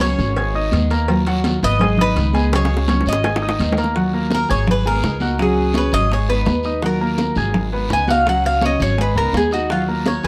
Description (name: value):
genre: latin, Cuban son and guajira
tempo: 167 BPM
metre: 4/4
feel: straight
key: Eb minor from 4.0 s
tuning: A4 = 439 Hz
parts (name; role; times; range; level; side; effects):
- Cuban tres; melody; 0.0-10.3 s; F4 to Ab5; -23 LUFS; equal; none
- fingerpicked steel-string acoustic guitar; accompaniment; 0.0-10.3 s; Db3 to Ab4; -26 LUFS; equal; none
- clear concert grand piano; arpeggios; 0.0-10.3 s; Gb3 to Ab6; -26 LUFS; equal; none
- upright bass; bass; 0.0-10.3 s; Ab1 to Eb2; -23 LUFS; equal; none
- congas; percussion; 0.0-10.3 s; none; -26 LUFS; equal; none
- cowbell and bongos; percussion; 0.0-10.2 s; none; -28 LUFS; equal; none
- guiro; percussion; 0.0-10.3 s; none; -37 LUFS; equal; none
room: light reverb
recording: dark, warm production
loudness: -18 LUFS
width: mono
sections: 0.0-4.0 A section; 4.0-10.3 B section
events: drum fill 2.5-4.0; Cuban tres solo 4.0-10.3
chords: 0.4 Abm; 1.1 Ebmadd9; 1.8 Abm; 2.5 Dbsus4; 3.2 Abm; 4.0 Ebmadd9; 4.7 Abm; 5.4 Dbsus4; 6.1 Abm; 6.8 Ebmadd9; 7.5 Abm; 8.3 Dbsus4; 9.0 Abm; 9.7 Ebmadd9